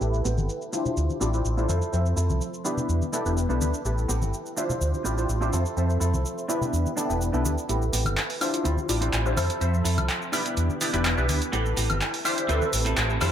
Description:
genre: filtered disco house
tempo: 125 BPM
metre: 4/4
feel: straight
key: A minor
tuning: A4 = 441 Hz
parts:
  - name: funky polysynth comp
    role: accompaniment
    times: 0.0-13.3 s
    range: F3 to E5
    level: -28 LUFS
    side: equal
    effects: chorus, phaser, cassette tape, low-pass filter
  - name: fingered electric bass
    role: bass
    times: 0.0-13.3 s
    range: E1 to F2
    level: -25 LUFS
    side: equal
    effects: low-pass filter
  - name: punchy analog drum machine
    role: drums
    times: 0.0-13.3 s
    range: handclaps, hi-hat, shaker, woodblock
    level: -30 LUFS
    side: equal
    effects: low-pass filter on perc, low-pass filter on hats, low-pass filter on snare, low-pass filter on room
  - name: tube shaker and congas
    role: percussion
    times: 0.0-13.3 s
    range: none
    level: -35 LUFS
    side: left 3 dB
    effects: low-pass filter on perc
  - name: semi-hollow electric guitar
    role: riff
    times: 0.2-13.3 s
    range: B3 to A4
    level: -34 LUFS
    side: right 2 dB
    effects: wide subtle chorus, low-pass filter
room: moderate plate reverb, RT60 2.1 s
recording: dreamy mix soaked in reverb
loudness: -23 LUFS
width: side -10 dB against mid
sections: 0.0-7.7 A section; 7.7-13.3 B section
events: filter sweep 0.0-7.7, 7.7-13.3; build-up 7.7-13.3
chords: 0.0 Am9; 1.0 Dm11; 1.7 Fmaj7; 2.7 Em7; 3.9 Am9; 4.8 Dm11; 5.5 Fmaj7; 6.5 Em7; 7.7 Am9; 8.7 Dm11; 9.4 Fmaj7; 10.3 Em7; 11.5 Am9; 12.5 Dm11

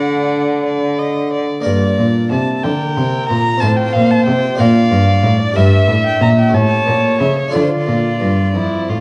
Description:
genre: classical, baroque-style sonata movement with continuo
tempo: 61 BPM (dotted quarters)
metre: 6/8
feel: straight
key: G minor, D minor from 5.6 s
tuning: A4 = 436 Hz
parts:
  - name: warm violin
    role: melody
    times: 0.0-9.0 s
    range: C5 to Bb5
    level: -23 LUFS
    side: equal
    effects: none
  - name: rich violin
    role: second line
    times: 0.0-9.0 s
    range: E4 to E5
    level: -22 LUFS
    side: equal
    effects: none
  - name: harpsichord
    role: accompaniment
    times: 0.0-9.0 s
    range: F2 to D5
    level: -20 LUFS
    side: equal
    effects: none
  - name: warm cello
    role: bass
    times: 0.0-9.0 s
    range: F2 to D3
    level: -18 LUFS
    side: equal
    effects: none
room: wet recital hall reverb, RT60 1.4 s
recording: worn, warbling old tape, cassette tape, warbly pitch drift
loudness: -15 LUFS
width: mono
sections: 0.0-9.0 A section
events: none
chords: 0.0 D; 1.7 Gm; 3.6 F/A; 4.6 Bb; 5.6 Em7b5/G; 6.5 A7; 7.5 Dm

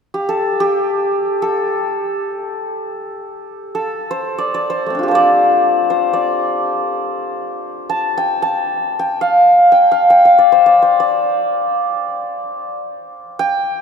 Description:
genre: indian classical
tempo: free time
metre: none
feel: none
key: A raga malkauns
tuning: A4 = 440 Hz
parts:
  - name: santur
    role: solo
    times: 0.1-13.8 s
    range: A3 to A5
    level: -13 LUFS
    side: left 1 dB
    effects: none
room: wet cathedral reverb, RT60 5.8 s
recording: in a vast, echoing space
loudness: -13 LUFS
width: side -6 dB against mid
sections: 0.0-13.8 A section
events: none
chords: none

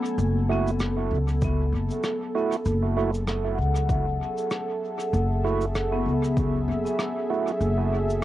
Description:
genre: ambient dub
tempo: 97 BPM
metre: 4/4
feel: swing 58% on 16ths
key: F# minor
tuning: A4 = 439 Hz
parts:
  - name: warm analog pad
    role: sustained chords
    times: 0.0-8.2 s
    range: F#3 to G#5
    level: -30 LUFS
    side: right 3 dB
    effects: chorus
  - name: vibraphone with hard mallets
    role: arpeggios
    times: 0.0-8.2 s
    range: B3 to F#5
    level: -31 LUFS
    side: left 6 dB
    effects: low-pass filter, tape echo
  - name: cabasa and rim click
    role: drums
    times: 0.1-8.2 s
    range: none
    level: -36 LUFS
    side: equal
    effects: cassette tape, dub echo
  - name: upright bass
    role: bass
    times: 0.2-8.2 s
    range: F#1 to C#2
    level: -25 LUFS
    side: equal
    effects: none
  - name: tonewheel organ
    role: stabs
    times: 0.5-7.5 s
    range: A3 to F#4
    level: -29 LUFS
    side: right 6 dB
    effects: slow rotary speaker, low-pass filter, dub echo
  - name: electronic kick drum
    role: drums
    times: 1.4-6.5 s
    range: none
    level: -27 LUFS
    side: equal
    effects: cassette tape
room: moderate booth ambience, RT60 0.2 s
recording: home recording on cassette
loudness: -23 LUFS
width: side -14 dB against mid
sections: 0.2-8.2 A section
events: break 0.0; filter sweep on vibraphone 0.2-8.2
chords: 0.2 F#m7

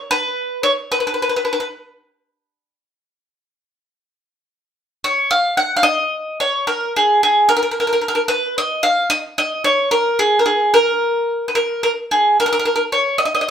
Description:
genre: italian folk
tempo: 73 BPM (dotted quarters)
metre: 6/8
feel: straight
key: unclear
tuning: A4 = 441 Hz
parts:
  - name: bowl-back mandolin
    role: solo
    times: 0.1-1.7, 5.0-13.5 s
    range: G#4 to F#5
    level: -15 LUFS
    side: equal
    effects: none
room: moderate studio reverb, RT60 0.8 s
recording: band playing live in one room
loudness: -15 LUFS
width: side -8 dB against mid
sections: 0.0-13.5 A section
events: none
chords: none

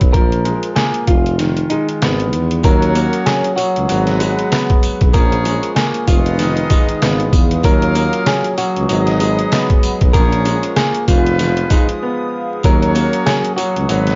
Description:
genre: hip hop, boom-bap hip-hop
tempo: 96 BPM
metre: 4/4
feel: swing 58% on 16ths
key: Eb minor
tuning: A4 = 441 Hz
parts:
  - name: warm upright piano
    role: accompaniment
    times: 0.0-14.2 s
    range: Eb3 to F4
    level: -22 LUFS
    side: equal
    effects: none
  - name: mellow tuba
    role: bass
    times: 0.0-14.2 s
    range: F1 to Fb2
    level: -20 LUFS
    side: equal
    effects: transformer saturation
  - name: trip hop sampler-style drum kit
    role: drums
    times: 0.0-14.2 s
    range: handclaps, hi-hat, kick drum, snare drum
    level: -18 LUFS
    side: equal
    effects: none
  - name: semi-hollow electric guitar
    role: melody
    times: 0.1-14.0 s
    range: Eb4 to Bb4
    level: -24 LUFS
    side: equal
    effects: spring reverb, analog delay
  - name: dark analog pad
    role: sustained chords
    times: 3.0-14.2 s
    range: Gb4 to Eb6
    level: -31 LUFS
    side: equal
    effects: none
  - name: warm horn section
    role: stabs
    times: 2.6-14.2 s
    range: Ab3 to F5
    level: -26 LUFS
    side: equal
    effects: analog delay
  - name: sleigh bells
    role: percussion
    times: 2.6-14.1 s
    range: none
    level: -34 LUFS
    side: equal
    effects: none
room: studio reverb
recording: dry, gritty hardware recording, transformer saturation, vinyl crackle, nothing above 7.5 kHz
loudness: -15 LUFS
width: mono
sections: 0.0-2.6 A section; 2.6-14.2 B section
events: kick muted 1.4-2.6; break 12.0-12.6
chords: 0.1 Bb5; 1.1 Fm7b5; 2.6 Ebm7; 3.9 Abm7; 5.1 Bbm7; 6.1 Fm7b5; 7.6 Ebm7; 8.9 Abm7; 10.1 Bbm7; 11.1 Fm7b5; 12.6 Ebm7

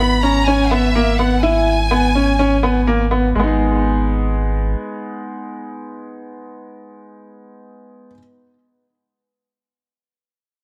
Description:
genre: piano and strings electronica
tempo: 125 BPM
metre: 4/4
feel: straight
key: G# minor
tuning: A4 = 443 Hz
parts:
  - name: dark studio violin section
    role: melody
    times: 0.0-2.9 s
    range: E5 to B5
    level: -23 LUFS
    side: equal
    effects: tape echo
  - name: clear upright piano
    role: riff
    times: 0.0-8.2 s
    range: G#3 to G#4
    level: -20 LUFS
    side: equal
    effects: tape echo
  - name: warm sub bass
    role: bass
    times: 0.0-4.8 s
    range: G#1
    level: -21 LUFS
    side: equal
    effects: none
room: moderate echo chamber reverb, RT60 2.1 s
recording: none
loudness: -16 LUFS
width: mono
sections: 0.0-3.4 A section; 3.4-7.2 B section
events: drop 0.0-3.4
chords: 0.0 E/G# (rootless); 3.4 G#m

